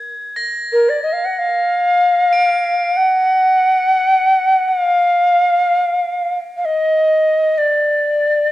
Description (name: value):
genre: world meditative, free-time meditation music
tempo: free time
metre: none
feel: none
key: unclear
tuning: A4 = 442 Hz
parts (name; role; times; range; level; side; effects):
- crotales; texture; 0.0-8.5 s; Ab6 to D7; -26 LUFS; equal; cassette tape
- breathy mellow Native American-style cedar flute; melody; 0.7-8.5 s; Bb4 to Gb5; -13 LUFS; equal; cassette tape
room: wet studio reverb, RT60 0.6 s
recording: home recording on cassette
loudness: -13 LUFS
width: side -15 dB against mid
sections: 0.0-8.5 A section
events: none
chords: none